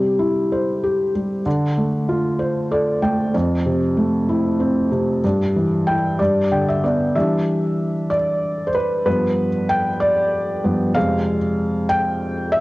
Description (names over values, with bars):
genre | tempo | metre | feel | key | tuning
pop | 63 BPM (dotted quarters) | 6/8 | straight | unclear | A4 = 439 Hz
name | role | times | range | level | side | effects
felt-muted upright piano | solo | 0.0-12.6 s | F2 to G5 | -17 LUFS | equal | cassette tape
room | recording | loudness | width
light reverb, small room ambience | home recording on cassette | -17 LUFS | side -19 dB against mid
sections
0.0-7.2 A section; 7.2-12.6 B section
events
felt piano fill 2.4-3.3, 6.2-7.2; felt piano solo 7.2-12.6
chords
0.0 C; 1.5 Dm7; 3.3 Fmaj7; 5.2 Em/G; 6.2 G; 7.2 Em7; 9.1 G7; 11.0 Fmadd9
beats
0.51 | 1.46 2.40 | 3.34 4.29 | 5.24 6.19 | 7.15 8.11 | 9.06 10.01 | 10.96 11.90